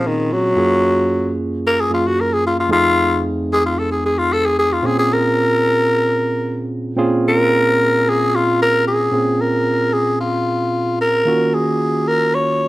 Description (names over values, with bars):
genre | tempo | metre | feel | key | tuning
blues | 112 BPM | 4/4 | straight | Bb minor | A4 = 440 Hz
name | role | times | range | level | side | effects
growling tenor saxophone | melody | 0.0-12.7 s | Eb3 to Db5 | -16 LUFS | left 1 dB | plate reverb
barky tine electric piano | accompaniment | 0.0-12.7 s | F2 to Ab4 | -19 LUFS | right 2 dB | none
room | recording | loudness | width
wet club reverb, RT60 0.5 s | none | -14 LUFS | side -17 dB against mid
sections
0.0-9.1 A section; 9.1-12.7 B section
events
tenor saxophone solo 0.0-9.1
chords
0.0 Bbm9; 0.6 Gbmaj7; 2.7 F7#9; 4.8 Bbm9; 11.3 Ebm9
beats
0.03 | 0.57 1.10 1.64 2.17 | 2.71 3.24 3.78 4.31 | 4.85 5.38 5.92 6.45 | 6.99 7.52 8.06 8.59 | 9.13 9.66 10.20 10.73 | 11.27 11.80 12.34